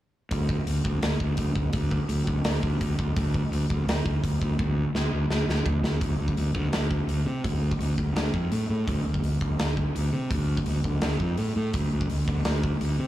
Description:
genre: heavy metal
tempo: 168 BPM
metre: 4/4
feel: straight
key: D minor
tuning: A4 = 439 Hz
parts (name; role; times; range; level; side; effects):
- fuzz fingered electric bass; bass; 0.3-13.1 s; D2 to C3; -26 LUFS; equal; overdrive
- big rock drum kit; drums; 0.3-12.9 s; hi-hat, kick drum, snare drum, toms; -28 LUFS; equal; none
room: little or no reverb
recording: blown-out, overdriven recording, overdrive, small room ambience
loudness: -24 LUFS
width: side -14 dB against mid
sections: 0.3-6.0 A section; 6.0-13.1 B section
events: drum fill 4.6-6.0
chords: none

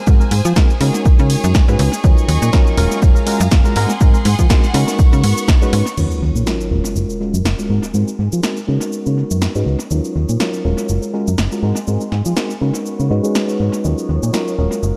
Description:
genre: filtered disco house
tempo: 122 BPM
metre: 4/4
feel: swing 56% on 16ths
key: Eb minor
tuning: A4 = 437 Hz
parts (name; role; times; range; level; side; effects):
- clear studio violin section; sustained chords; 0.0-15.0 s; Cb4 to Gb6; -31 LUFS; equal; sidechain pumping, low-pass filter
- barky reed electric piano; accompaniment; 0.1-15.0 s; Gb3 to Cb5; -23 LUFS; equal; overdrive, phaser, sidechain pumping, low-pass filter, analog delay
- slap-like FM bass; bass; 0.1-14.9 s; Eb1 to F3; -18 LUFS; equal; sidechain pumping, low-pass filter
- electronic kick drum; drums; 0.1-5.6 s; none; -14 LUFS; equal; none
- punchy analog drum machine; drums; 0.1-14.9 s; crash cymbal, hi-hat, shaker, snare drum; -26 LUFS; equal; sidechain pumping on hats, sidechain pumping on perc, sidechain pumping on cymbals, analog delay
- tambourine; percussion; 0.1-14.9 s; none; -36 LUFS; equal; sidechain pumping on perc, low-pass filter on perc, analog delay
- sub drop; sound effects; 6.0-7.9 s; none; -27 LUFS; equal; none
room: light reverb, digital ambience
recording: echo-heavy mix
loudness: -16 LUFS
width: mono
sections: 0.0-6.0 A section; 6.0-15.0 B section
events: impact 6.0-7.9; filter sweep 6.0-15.0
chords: 0.0 Ab7; 0.8 Db7sus4; 2.0 Ebm7; 3.0 Gbmaj7; 3.8 Ab7; 4.7 Db7sus4; 6.0 Ebm7; 7.0 Gbmaj7; 7.7 Ab7; 8.7 Db7sus4; 9.9 Ebm7; 10.9 Gbmaj7; 11.6 Ab7; 12.6 Db7sus4; 13.8 Ebm7

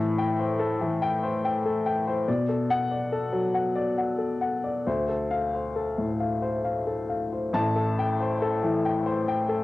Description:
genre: neoclassical minimalist piano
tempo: 66-72 BPM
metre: 3/4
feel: rubato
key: A minor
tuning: A4 = 440 Hz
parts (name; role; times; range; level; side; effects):
- warm baby grand piano; solo; 0.0-9.6 s; A1 to A5; -24 LUFS; left 2 dB; cassette tape
room: light reverb, small room ambience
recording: home recording on cassette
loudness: -24 LUFS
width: side -16 dB against mid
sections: 0.0-7.5 A section; 7.5-9.6 B section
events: none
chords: 0.0 Am7; 2.3 Bm7; 4.9 Dm7; 7.5 Am7

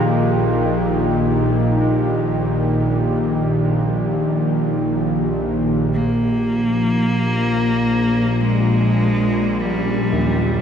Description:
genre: ambient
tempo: free time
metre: none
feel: none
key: unclear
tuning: A4 = 441 Hz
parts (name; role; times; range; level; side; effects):
- sweeping resonant pad; sustained chords; 0.0-10.6 s; Bb2 to G4; -21 LUFS; equal; chorus
- old church bells; arpeggios; 0.0-10.6 s; Eb3 to F4; -29 LUFS; right 3 dB; diffuse ambient delay
- bowed-like drone; drone; 0.0-10.6 s; Bb1 to Bb2; -20 LUFS; equal; built-in reverb
- dark cello; melody; 5.9-10.6 s; G3 to Bb3; -20 LUFS; left 1 dB; diffuse ambient delay
room: wet huge ambient reverb, RT60 7.8 s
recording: none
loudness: -16 LUFS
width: side -8 dB against mid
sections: 0.0-5.9 A section; 5.9-10.6 B section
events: none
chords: 0.0 Bb5; 5.9 Bbm

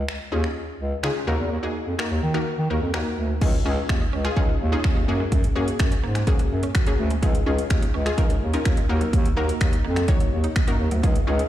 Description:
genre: dance-pop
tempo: 126 BPM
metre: 4/4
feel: straight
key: Db major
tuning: A4 = 442 Hz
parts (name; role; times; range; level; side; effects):
- mellow bass clarinet; bass; 0.0-11.4 s; Db2 to Eb3; -24 LUFS; equal; sidechain pumping
- house drum kit; drums; 0.1-11.5 s; crash cymbal, finger snaps, hi-hat, kick drum; -23 LUFS; equal; none
- wide unison pluck; accompaniment; 0.3-11.5 s; Bb3 to Db5; -28 LUFS; left 2 dB; sidechain pumping
- mallet-like synth pluck; arpeggios; 3.4-11.4 s; Eb3 to Eb5; -33 LUFS; right 5 dB; chorus, sidechain pumping, dub echo
room: light reverb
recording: played on a big sound system in a bare room, large studio reverb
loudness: -20 LUFS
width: side -13 dB against mid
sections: 0.0-3.4 A section; 3.4-11.5 B section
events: kick muted 1.5-3.4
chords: 0.0 Dbadd9; 1.3 Ebm; 3.4 Dbadd9; 5.1 Gbadd9; 7.2 Dbadd9; 8.9 Ebm

